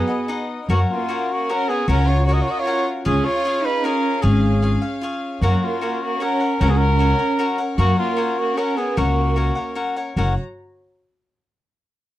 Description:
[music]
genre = mexican folk, mariachi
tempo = 152 BPM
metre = 3/4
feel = straight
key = F# major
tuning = A4 = 437 Hz
[part]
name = dark trumpet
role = melody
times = 0.0-9.8 s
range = E#4 to D#5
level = -23 LUFS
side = equal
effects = none
[part]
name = clear studio violin section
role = second line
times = 0.0-9.8 s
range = A#3 to F#4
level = -25 LUFS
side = right 4 dB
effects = none
[part]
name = cavaquinho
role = accompaniment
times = 0.0-10.3 s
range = D#4 to F#5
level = -26 LUFS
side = left 3 dB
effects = none
[part]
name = warm studio violin section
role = sustained chords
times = 0.0-10.4 s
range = B3 to A#5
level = -32 LUFS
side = equal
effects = none
[part]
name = upright bass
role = bass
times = 0.7-10.3 s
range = F#1 to F#2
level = -18 LUFS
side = equal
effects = none
[sound]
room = light reverb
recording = dry, close 1970s-style studio recording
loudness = -18 LUFS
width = side -14 dB against mid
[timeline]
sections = 0.7-10.2 A section; 10.2-11.3 B section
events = none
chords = 0.0 B; 0.7 F#; 3.1 C#; 5.4 F#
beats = 0.29 | 0.69 1.09 1.49 | 1.88 2.28 2.67 | 3.06 3.45 3.84 | 4.23 4.62 5.02 | 5.42 5.82 6.22 | 6.61 7.00 7.39 | 7.79 8.18 8.57 | 8.97 9.36 9.76 | 10.16

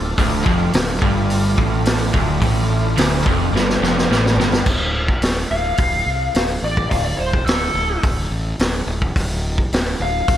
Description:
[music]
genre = blues rock power trio and southern rock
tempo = 107 BPM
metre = 4/4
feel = straight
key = D minor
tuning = A4 = 440 Hz
[part]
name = overdriven tonewheel organ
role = sustained chords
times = 0.0-4.7 s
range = A3 to A4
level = -27 LUFS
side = right 3 dB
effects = slow rotary speaker, chorus vibrato
[part]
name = crunchy overdriven guitar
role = riff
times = 0.0-4.7 s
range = D2 to A2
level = -19 LUFS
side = equal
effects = none
[part]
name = fuzz fingered electric bass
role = bass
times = 0.0-10.4 s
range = D1 to C2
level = -23 LUFS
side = equal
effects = overdrive
[part]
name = vintage drum kit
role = drums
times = 0.2-10.4 s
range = crash cymbal, hi-hat, kick drum, snare drum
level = -19 LUFS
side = equal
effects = none
[part]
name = biting lead guitar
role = melody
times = 5.5-10.4 s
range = A4 to F5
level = -22 LUFS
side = left 1 dB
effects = wah, overdrive, slapback echo
[sound]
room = light reverb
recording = none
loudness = -16 LUFS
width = side -11 dB against mid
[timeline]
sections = 0.0-4.7 A section; 4.7-10.4 B section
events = drum fill 3.5-4.7; lead electric guitar solo 4.7-10.4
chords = 0.0 Dm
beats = | 0.17 0.73 1.29 1.85 | 2.42 2.98 3.54 4.10 | 4.67 5.23 5.79 6.35 | 6.92 7.48 8.04 8.60 | 9.16 9.73 10.29

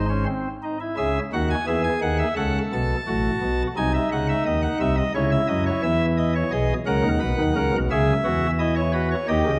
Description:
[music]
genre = classical, baroque-style 3-part fugue for pipe organ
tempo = 86 BPM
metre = 4/4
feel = straight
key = C# minor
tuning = A4 = 440 Hz
[part]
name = pipe organ, cornet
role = solo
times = 0.0-9.6 s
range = G#1 to A5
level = -23 LUFS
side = equal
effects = none
[sound]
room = wet scoring stage reverb, RT60 1.7 s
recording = none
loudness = -23 LUFS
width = mono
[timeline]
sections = 1.0-9.6 A section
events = none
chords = 0.0 G#; 1.0 C#m; 2.4 A69; 3.8 G#7/B#; 5.1 C#m; 6.5 G#m/B; 7.9 C#m11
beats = 0.25 | 0.97 1.67 2.37 3.06 | 3.76 4.46 5.15 5.84 | 6.53 7.22 7.91 8.60 | 9.29

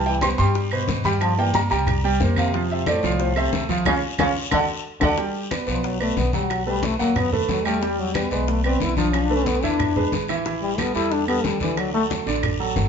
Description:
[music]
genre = Afro-Cuban jazz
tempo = 182 BPM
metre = 4/4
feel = straight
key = C major, G major from 5.2 s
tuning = A4 = 445 Hz
[part]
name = felt-muted upright piano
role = melody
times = 0.0-5.1 s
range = C5 to C6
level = -24 LUFS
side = right 2 dB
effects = none
[part]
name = clear trombone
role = second line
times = 0.0-12.0 s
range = A2 to E4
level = -25 LUFS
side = left 5 dB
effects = none
[part]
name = warm concert grand piano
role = accompaniment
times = 0.0-12.9 s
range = B2 to G5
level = -25 LUFS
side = right 4 dB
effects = none
[part]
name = upright bass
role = bass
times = 0.0-12.9 s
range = G1 to G2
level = -26 LUFS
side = equal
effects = none
[part]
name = bongos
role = percussion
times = 0.1-12.9 s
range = none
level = -32 LUFS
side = left 6 dB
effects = none
[part]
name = congas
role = percussion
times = 0.1-12.9 s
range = none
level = -29 LUFS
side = left 2 dB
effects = none
[part]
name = claves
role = percussion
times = 0.2-12.6 s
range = none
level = -31 LUFS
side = right 5 dB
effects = none
[part]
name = guiro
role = percussion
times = 0.2-12.9 s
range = none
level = -33 LUFS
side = left 5 dB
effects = none
[sound]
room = wet stone room reverb, RT60 1.0 s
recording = band playing live in one room, nothing above 7.5 kHz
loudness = -19 LUFS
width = side -7 dB against mid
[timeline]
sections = 0.0-5.2 A section; 5.2-12.9 B section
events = band accent 3.9-5.2; drum fill 4.7-5.2; trombone solo 5.2-12.9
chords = 0.0 C5; 1.2 Gm; 1.9 C5; 2.5 Fmaj7; 3.9 Db; 4.5 D; 5.2 Gmaj7; 6.5 B7; 7.8 Em7; 9.1 Bm11; 9.8 E7; 10.5 A5; 11.8 D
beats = 0.22 0.55 0.88 | 1.21 1.54 1.87 2.21 | 2.54 2.87 3.20 3.53 | 3.86 4.19 4.52 4.85 | 5.18 5.51 5.84 6.17 | 6.50 6.83 7.16 7.49 | 7.82 8.15 8.48 8.81 | 9.14 9.47 9.80 10.13 | 10.46 10.79 11.12 11.45 | 11.77 12.10 12.43 12.76

